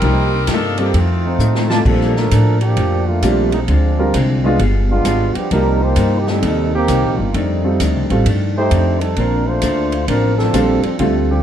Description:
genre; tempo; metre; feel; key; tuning
jazz, big band swing; 131 BPM; 4/4; swing 66% on 8ths; Bb major; A4 = 441 Hz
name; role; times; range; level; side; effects
clear saxophone section; melody; 0.0-1.7 s; Eb3 to Bb4; -21 LUFS; left 1 dB; none
vintage hollow-body jazz guitar; accompaniment; 0.0-11.3 s; F2 to C5; -23 LUFS; left 3 dB; none
warm grand piano; accompaniment; 0.0-11.4 s; F3 to Bb4; -20 LUFS; right 2 dB; none
upright bass; bass; 0.0-11.4 s; G1 to Bb2; -17 LUFS; equal; none
swinging big-band drum kit; drums; 0.0-11.1 s; crash cymbal, hi-hat, kick drum, ride cymbal, snare drum; -24 LUFS; left 1 dB; none
warm trombone section; second line; 1.2-11.4 s; Eb3 to C5; -19 LUFS; right 1 dB; none
mellow trumpet section; stabs; 1.7-1.8 s; F4 to A5; -24 LUFS; right 5 dB; none
room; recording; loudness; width
light reverb; none; -13 LUFS; side -9 dB against mid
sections
0.0-1.9 A section; 1.9-11.4 B section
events
drum fill 1.4-1.9; trombone section solo 1.9-11.4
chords
0.0 Cm7; 0.9 F7; 1.9 Bbmaj7; 3.7 Dm7b5; 4.6 G7b9; 5.5 Cm7; 7.3 F13; 9.2 Bbmaj9

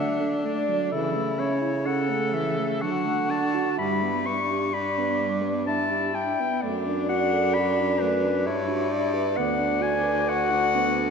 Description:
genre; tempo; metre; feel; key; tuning
classical, lyrical piece for single-reed quartet; 64 BPM; 3/4; rubato; D major; A4 = 440 Hz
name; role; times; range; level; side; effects
clear clarinet; melody; 0.0-11.1 s; A4 to C#6; -27 LUFS; left 5 dB; none
mellow alto saxophone; second line; 0.0-11.1 s; E3 to B4; -29 LUFS; right 5 dB; none
warm tenor saxophone; accompaniment; 0.0-11.0 s; D4 to A4; -29 LUFS; equal; none
warm baritone saxophone; bass; 0.0-11.1 s; D2 to D3; -28 LUFS; right 1 dB; none
room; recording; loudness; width
wet scoring stage reverb, RT60 1.8 s; minimal, uncompressed stereo recording; -22 LUFS; side -6 dB against mid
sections
0.0-11.1 A section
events
none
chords
0.0 D; 0.9 A/C#; 2.8 D; 3.8 G; 6.6 D/F#; 8.5 Gmaj7; 9.4 Bm/D

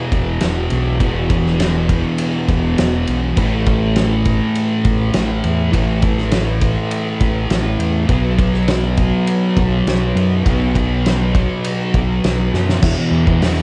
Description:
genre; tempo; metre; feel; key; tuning
rock, shoegaze and dream pop; 102 BPM; 4/4; straight; unclear; A4 = 440 Hz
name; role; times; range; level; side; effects
thick fuzz guitar; riff; 0.0-13.6 s; E2 to B3; -20 LUFS; equal; distortion, lush chorus, cassette tape
growling fingered electric bass; bass; 0.1-13.6 s; E1 to F#2; -22 LUFS; equal; overdrive
loose indie drum kit; drums; 0.1-13.6 s; crash cymbal, hi-hat, kick drum, ride cymbal, snare drum; -22 LUFS; equal; cassette tape
room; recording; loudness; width
little or no reverb; home recording on cassette, nothing above 10.5 kHz; -17 LUFS; mono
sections
0.0-12.8 A section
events
drum fill 12.5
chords
0.0 E5; 3.4 A5; 8.1 B5; 12.8 E5

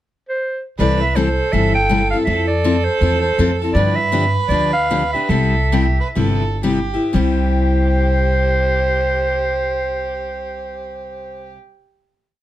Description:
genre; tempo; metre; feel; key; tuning
acoustic string swing (jazz manouche); 113-163 BPM; 4/4; swing 62% on 8ths; C major; A4 = 441 Hz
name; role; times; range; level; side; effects
growling clarinet; melody; 0.3-11.5 s; C5 to G5; -20 LUFS; equal; none
warm violin; second line; 0.8-11.5 s; G4 to B4; -24 LUFS; right 6 dB; none
picked steel-string acoustic guitar; accompaniment; 0.8-11.6 s; C3 to A4; -20 LUFS; left 4 dB; none
upright bass; bass; 0.8-11.5 s; G1 to G2; -19 LUFS; equal; none
room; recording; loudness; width
light reverb; close, detailed microphones; -15 LUFS; side -13 dB against mid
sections
0.0-0.8 pickup bar; 0.8-7.1 A section; 7.1-11.4 final chord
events
slowing down 3.7-7.1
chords
0.0 N.C.; 0.8 C6; 2.3 Fmaj7; 3.7 G7; 5.3 Cmaj7; 7.1 C

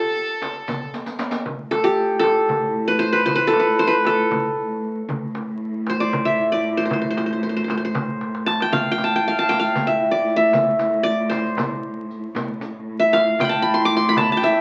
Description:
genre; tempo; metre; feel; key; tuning
Turkish makam ensemble; 231 BPM (eighths); 7/8; straight; A makam nihavent; A4 = 440 Hz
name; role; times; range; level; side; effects
qanun; melody; 0.0-14.6 s; G4 to D6; -21 LUFS; equal; none
bright chamber violin section; second line; 0.0-0.9 s; A4; -30 LUFS; equal; none
darbuka; percussion; 0.2-14.5 s; none; -34 LUFS; equal; none
riq; percussion; 0.2-1.4, 8.7-14.5 s; none; -34 LUFS; equal; none
frame drum; percussion; 0.4-14.5 s; none; -36 LUFS; equal; none
dark studio cello section; drone; 1.5-14.6 s; A2; -29 LUFS; equal; none
room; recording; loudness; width
wet club reverb, RT60 0.6 s; very old 78 rpm record, vinyl crackle; -20 LUFS; mono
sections
0.0-1.5 A section; 1.5-14.6 B section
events
drum fill 0.9-1.5, 8.2-8.7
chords
none

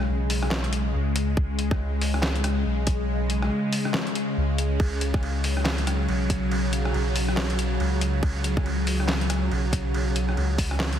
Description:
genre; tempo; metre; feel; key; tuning
deep dubstep; 140 BPM; 4/4; swing 60% on 16ths, half-time; unclear; A4 = 440 Hz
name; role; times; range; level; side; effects
bowed-like drone; sustained chords; 0.0-11.0 s; C#3 to G#3; -28 LUFS; left 1 dB; built-in reverb, phaser
soft dub sub bass; bass; 0.0-11.0 s; B1 to C#2; -25 LUFS; equal; none
trip hop sampler-style drum kit; drums; 0.0-11.0 s; crash cymbal, handclaps, hi-hat, rim click, snare drum; -30 LUFS; equal; none
electronic kick drum; drums; 1.4-10.7 s; none; -24 LUFS; equal; overdrive
room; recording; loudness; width
light reverb; heavily compressed radio sound, multiband compression; -22 LUFS; side -9 dB against mid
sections
0.0-11.0 A section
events
none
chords
0.0 C#5

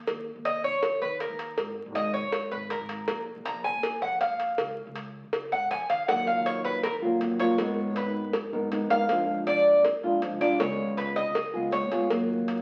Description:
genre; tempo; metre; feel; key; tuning
latin, Cuban son and guajira; 160 BPM; 4/4; straight; Eb minor; A4 = 440 Hz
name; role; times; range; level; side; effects
upright bass; bass; 0.0-12.6 s; Ab1 to Eb3; -44 LUFS; equal; none
cowbell; percussion; 0.1-12.6 s; none; -36 LUFS; equal; none
Cuban tres; arpeggios; 0.5-12.1 s; Bb4 to Bb5; -29 LUFS; equal; none
flamenco guitar; accompaniment; 6.1-12.6 s; Db3 to Bb4; -30 LUFS; equal; none
room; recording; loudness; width
wet large studio reverb, RT60 0.9 s; very old 78 rpm record, vinyl crackle; -27 LUFS; mono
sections
0.0-12.6 A section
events
Cuban tres solo 0.0-12.6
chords
0.1 Eb5; 1.6 Absus2; 3.1 Bb5; 4.6 Db; 6.1 Ebmadd9; 7.6 Abmadd9; 9.1 Bb7; 10.6 Db7; 12.1 Ebmadd9

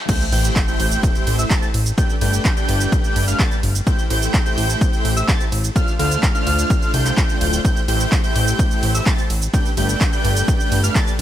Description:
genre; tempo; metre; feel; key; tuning
EDM, festival progressive house; 127 BPM; 4/4; straight; A minor; A4 = 435 Hz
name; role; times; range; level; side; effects
wide unison lead; arpeggios; 0.1-11.1 s; E6 to A6; -25 LUFS; equal; sidechain pumping, ping-pong delay
dense compressed supersaw; riff; 0.1-11.1 s; A3 to A5; -24 LUFS; equal; sidechain pumping, ping-pong delay
big-room dance drum kit; drums; 0.1-11.2 s; cabasa, crash cymbal, handclaps, hi-hat, ride cymbal; -25 LUFS; right 2 dB; overdrive
electronic kick drum; drums; 0.1-11.0 s; none; -19 LUFS; equal; overdrive
sub drop; sound effects; 0.1-2.0 s; none; -28 LUFS; equal; none
fat analog bass; bass; 0.3-11.2 s; D1 to D2; -19 LUFS; equal; sidechain pumping
room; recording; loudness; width
little or no reverb; high-pass filter; -15 LUFS; side -12 dB against mid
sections
0.1-11.2 A section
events
drop 0.1-11.2; impact 0.1-2.0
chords
0.1 Am7; 2.0 Gadd9; 3.9 Am7; 5.8 Dm7; 7.6 Am7; 9.5 Gadd9

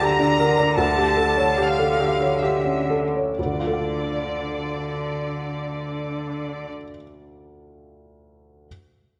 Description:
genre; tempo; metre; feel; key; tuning
classical, romantic movement for piano and orchestra; 59-81 BPM; 3/4; rubato; D minor; A4 = 440 Hz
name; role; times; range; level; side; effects
clear grand piano; melody; 0.0-8.7 s; D2 to F5; -25 LUFS; equal; none
muted chamber violin section; melody; 0.0-6.7 s; D5 to Bb5; -28 LUFS; equal; none
muted chamber cello section; bass; 0.0-6.7 s; D3; -30 LUFS; equal; none
room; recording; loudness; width
moderate scoring stage reverb, RT60 1.5 s; none; -22 LUFS; mono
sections
0.0-3.4 A section; 3.4-8.7 B section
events
slowing down 0.0-3.4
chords
0.0 Gm/D

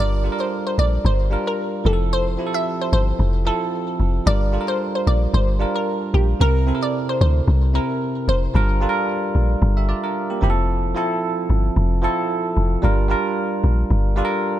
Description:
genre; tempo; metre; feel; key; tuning
afrobeats; 112 BPM; 4/4; swing 55% on 16ths; G dorian; A4 = 440 Hz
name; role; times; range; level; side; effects
glassy wavetable pluck; melody; 0.0-8.4 s; G4 to E5; -25 LUFS; equal; chorus
barky tine electric piano; accompaniment; 0.0-14.6 s; C3 to E5; -22 LUFS; right 2 dB; wide subtle chorus
deep log drum bass; bass; 0.0-14.2 s; F1 to D2; -18 LUFS; equal; none
room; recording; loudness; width
digital ambience; none; -18 LUFS; side -12 dB against mid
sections
0.0-14.6 A section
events
none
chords
0.0 Gm7; 1.9 Fmaj7; 4.3 Gm7; 6.4 C7; 8.5 Gm7; 10.4 Fmaj7; 12.8 Gm7

